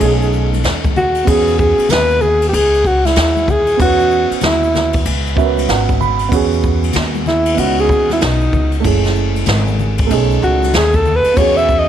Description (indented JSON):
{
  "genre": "hip hop, jazz-hop",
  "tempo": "95 BPM",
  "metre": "4/4",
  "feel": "swing 64% on 16ths",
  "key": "E major",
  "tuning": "A4 = 441 Hz",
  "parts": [
    { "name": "breathy alto saxophone", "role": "melody", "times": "0.0-11.9 s", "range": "D#4 to E5", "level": "-14 LUFS", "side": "left 1 dB", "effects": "none" },
    { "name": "dark baby grand piano", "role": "accompaniment", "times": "0.0-11.9 s", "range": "A3 to B5", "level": "-19 LUFS", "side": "right 11 dB", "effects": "none" },
    { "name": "upright bass", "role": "bass", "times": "0.0-11.9 s", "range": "F#1 to E2", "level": "-18 LUFS", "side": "left 1 dB", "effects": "none" },
    { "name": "jazz brush drum kit", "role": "drums", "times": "0.0-11.9 s", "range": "hi-hat, kick drum, ride cymbal, snare drum", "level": "-18 LUFS", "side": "left 1 dB", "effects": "none" },
    { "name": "tube shaker and congas", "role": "percussion", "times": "0.0-11.9 s", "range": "none", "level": "-27 LUFS", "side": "left 12 dB", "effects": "none" }
  ],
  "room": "light reverb, small room ambience",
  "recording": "1960s-style stereo with parts hard left and right",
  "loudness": "-12 LUFS",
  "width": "side -10 dB against mid",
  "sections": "0.0-6.3 A section; 6.3-11.9 B section",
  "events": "grand piano fill 5.1-6.3; alto saxophone solo 6.3-11.9",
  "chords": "0.0 B13; 1.3 E69; 7.6 C#9sus4; 8.8 F#m9; 10.1 B13; 11.4 E69",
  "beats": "0.01 0.64 | 1.27 1.90 2.53 3.17 | 3.80 4.43 5.06 5.69 | 6.32 6.95 7.59 8.22 | 8.85 9.48 10.11 10.74 | 11.38"
}